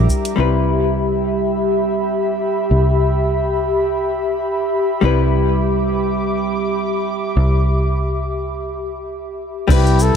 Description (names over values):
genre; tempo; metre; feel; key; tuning
sunset chillout; free time; none; none; C major; A4 = 440 Hz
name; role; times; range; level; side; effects
vintage hollow-body jazz guitar; accompaniment; 0.0-10.2 s; G3 to B4; -21 LUFS; moving between left 5 dB and right 12 dB; auto-pan, ping-pong delay
airy breathy pad; sustained chords; 0.0-9.7 s; G4 to D6; -20 LUFS; left 1 dB; chorus, vintage 12-bit sampler grit
fingered electric bass; bass; 0.0-10.1 s; C2; -18 LUFS; equal; none
electronic kick drum; drums; 0.1-0.2, 9.7-9.8 s; none; -17 LUFS; equal; studio reverb
smooth R&B drum kit; drums; 0.1-0.4, 9.7-10.1 s; crash cymbal, hi-hat, shaker; -28 LUFS; left 2 dB; low-pass filter on perc, studio reverb, low-pass filter on hats, low-pass filter on snare, low-pass filter on cymbals
breathy flugelhorn; melody; 9.7-10.2 s; G4 to A4; -23 LUFS; right 1 dB; none
room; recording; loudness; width
light reverb, digital ambience; none; -16 LUFS; side -7 dB against mid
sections
0.4-9.7 A section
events
none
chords
0.4 Cmaj7